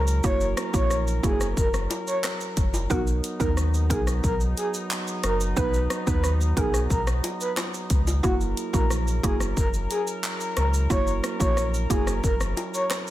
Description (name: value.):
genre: dancehall.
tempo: 90 BPM.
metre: 4/4.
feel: straight.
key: B major.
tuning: A4 = 438 Hz.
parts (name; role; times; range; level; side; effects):
dark brass ensemble; sustained chords; 0.0-13.1 s; F#3 to A#4; -34 LUFS; equal; sidechain pumping.
warm sub bass; bass; 0.0-12.5 s; F#1 to D#2; -25 LUFS; equal; none.
pop drum kit; drums; 0.1-13.1 s; handclaps, hi-hat, kick drum, rim click, shaker; -27 LUFS; equal; none.
maracas and timbales; percussion; 0.1-13.1 s; none; -37 LUFS; left 1 dB; none.
breathy flute-like synth lead; melody; 0.2-12.8 s; F#4 to C#5; -29 LUFS; equal; chorus, ping-pong delay.
mallet-like synth pluck; accompaniment; 0.2-12.2 s; A#3 to B4; -30 LUFS; right 4 dB; chorus.
room: little or no reverb.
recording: none.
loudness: -22 LUFS.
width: side -14 dB against mid.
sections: 0.0-13.1 A section.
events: none.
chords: 0.0 F#7; 2.9 Bmaj7; 8.2 F#7.